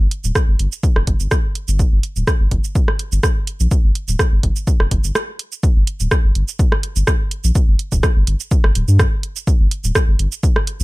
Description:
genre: minimal techno.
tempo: 125 BPM.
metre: 4/4.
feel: swing 53% on 16ths.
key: G minor.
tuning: A4 = 440 Hz.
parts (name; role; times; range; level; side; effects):
saturated sub bass; bass; 0.0-10.8 s; D1 to G2; -16 LUFS; equal; sidechain pumping.
punchy analog drum machine; drums; 0.1-10.8 s; hi-hat, rim click, shaker; -22 LUFS; right 2 dB; none.
electronic kick drum; drums; 0.4-10.5 s; none; -16 LUFS; equal; none.
room: little or no reverb.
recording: none.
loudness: -14 LUFS.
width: side -21 dB against mid.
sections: 0.0-5.6 A section; 5.6-10.8 B section.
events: break 5.2-5.6; drop 5.6-10.8.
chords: none.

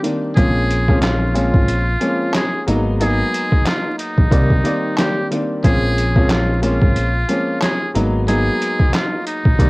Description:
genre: hip hop, boom-bap hip-hop.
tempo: 91 BPM.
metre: 4/4.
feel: swing 56% on 16ths.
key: unclear.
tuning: A4 = 439 Hz.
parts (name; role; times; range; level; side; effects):
warm upright piano; accompaniment; 0.0-9.7 s; Eb3 to D5; -20 LUFS; equal; high-pass filter, low-pass filter, cassette tape.
trip hop sampler-style drum kit; drums; 0.0-9.7 s; handclaps, hi-hat, kick drum, snare drum; -17 LUFS; equal; overdrive, vintage 12-bit sampler grit, cassette tape.
trumpet with metal mute; melody; 0.4-9.7 s; Eb4 to Ab4; -22 LUFS; equal; high-pass filter, low-pass filter, cassette tape.
deep dub fingered electric bass; bass; 0.4-9.7 s; Ab1 to C2; -19 LUFS; equal; none.
room: light reverb.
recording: home recording on cassette, vinyl crackle.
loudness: -14 LUFS.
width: side -25 dB against mid.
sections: 0.0-9.7 A section.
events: none.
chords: 0.4 Bbm9; 2.7 Abm9; 4.3 Cm9; 5.6 Bbm9; 7.9 Abm9.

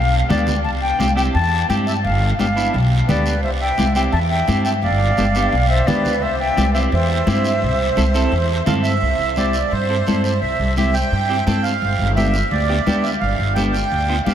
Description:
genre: latin, cumbia.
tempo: 172 BPM.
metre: 4/4.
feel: straight.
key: C major.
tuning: A4 = 440 Hz.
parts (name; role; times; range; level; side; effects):
bright reedy jazz flute; melody; 0.0-8.6 s; D5 to A5; -22 LUFS; left 2 dB; ping-pong delay.
upright bass; bass; 0.0-14.3 s; G1 to G2; -20 LUFS; equal; none.
clean electric guitar; accompaniment; 0.3-14.3 s; B3 to A4; -24 LUFS; right 2 dB; none.
congas; percussion; 0.3-14.3 s; none; -24 LUFS; left 2 dB; none.
guiro; percussion; 0.3-14.3 s; none; -32 LUFS; right 4 dB; none.
accordion; second line; 3.1-14.3 s; B4 to G5; -22 LUFS; right 4 dB; light tremolo tuning.
room: moderate huge ambient reverb, RT60 9.2 s.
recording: dreamy mix soaked in reverb.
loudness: -15 LUFS.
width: side -9 dB against mid.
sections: 0.0-9.0 A section; 9.0-14.3 B section.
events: accordion solo 9.0-14.3.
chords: 0.0 G7; 0.6 C; 2.0 G7; 3.4 C; 4.8 G7; 6.2 C; 11.8 G7.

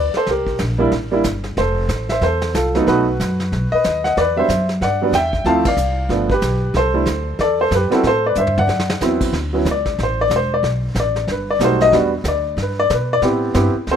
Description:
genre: jazz piano trio.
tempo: 185 BPM.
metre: 4/4.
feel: swing 61% on 8ths.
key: D major from 9.3 s.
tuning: A4 = 441 Hz.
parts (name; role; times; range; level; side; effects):
warm baby grand piano; melody; 0.0-14.0 s; F3 to A5; -17 LUFS; equal; none.
upright bass; bass; 0.0-14.0 s; E1 to B2; -22 LUFS; equal; none.
vintage brush drum kit; drums; 0.1-14.0 s; brushed snare drum, crash cymbal, hi-hat, kick drum, ride cymbal, snare drum, toms; -26 LUFS; equal; none.
room: little or no reverb.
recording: rough home demo mix.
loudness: -15 LUFS.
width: side -8 dB against mid.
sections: 0.0-9.3 A section; 9.3-14.0 B section.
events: band accent 5.6; drum fill 8.4-9.0; grand piano solo 9.3-14.0.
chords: 0.3 C7(no3); 1.6 Fmaj7; 2.9 B; 4.2 Em7; 5.5 Dm7; 6.1 G9; 6.8 C6; 8.0 Am7; 8.7 D13; 9.3 Dmaj7sus2; 10.6 B7b13; 11.9 Em7; 13.2 Am9.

